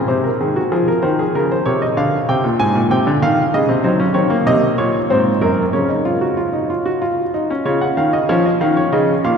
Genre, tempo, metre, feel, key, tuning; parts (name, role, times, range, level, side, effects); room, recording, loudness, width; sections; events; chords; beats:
classical, baroque-style 3-part fugue for grand piano; 95 BPM; 3/4; straight; Db major; A4 = 438 Hz
clear grand piano; solo; 0.0-9.4 s; Gb2 to Ab5; -14 LUFS; equal
wet cathedral reverb, RT60 4.1 s; minimal, uncompressed stereo recording; -14 LUFS; side -6 dB against mid
0.1-7.7 A section; 7.7-9.4 B section
0.1 Ab/C; 1.3 Bbmadd9; 2.0 Bb7; 3.2 Cmadd11; 3.8 Ebm7; 5.1 Ab7; 5.7 Db
| 0.08 0.71 1.34 | 1.97 2.60 3.23 | 3.85 4.47 5.11 | 5.74 6.38 7.03 | 7.67 8.30 8.93